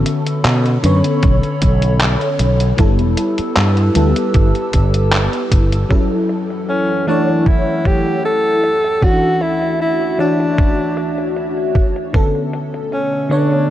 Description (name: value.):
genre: vaporwave.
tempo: 77 BPM.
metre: 4/4.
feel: straight.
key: unclear.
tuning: A4 = 440 Hz.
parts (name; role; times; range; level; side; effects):
FM electric piano with soft pad layer; accompaniment; 0.0-13.7 s; D3 to C#5; -18 LUFS; left 1 dB; ensemble chorus, cassette tape, tape echo.
warbly tape-like pad; sustained chords; 0.0-13.7 s; D2 to E6; -25 LUFS; right 1 dB; chorus, built-in reverb, phaser, vintage 12-bit sampler grit.
fretless electric bass; bass; 0.0-5.8 s; E1 to B2; -15 LUFS; equal; none.
detuned 8-bit digital drum machine; drums; 0.1-13.7 s; crash cymbal, handclaps, hi-hat; -22 LUFS; equal; low-pass filter on hats, vintage 12-bit sampler grit, studio reverb, low-pass filter on snare, low-pass filter on cymbals, gated reverb.
electronic kick drum; drums; 1.2-12.3 s; none; -14 LUFS; equal; vintage 12-bit sampler grit, studio reverb.
clear alto saxophone; melody; 6.7-13.7 s; C#4 to A4; -18 LUFS; equal; tape echo.
room: light reverb.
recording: cassette tape.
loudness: -13 LUFS.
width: side -13 dB against mid.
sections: 0.0-5.9 A section; 5.9-13.7 B section.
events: none.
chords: 0.0 Bm9; 2.8 G69; 5.9 F#m7; 8.6 Dmaj9; 12.1 Bm9.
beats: 0.45 1.23 2.01 | 2.79 3.57 4.35 5.13 | 5.91 6.69 7.47 8.25 | 9.03 9.80 10.58 11.36 | 12.14 12.92 13.70.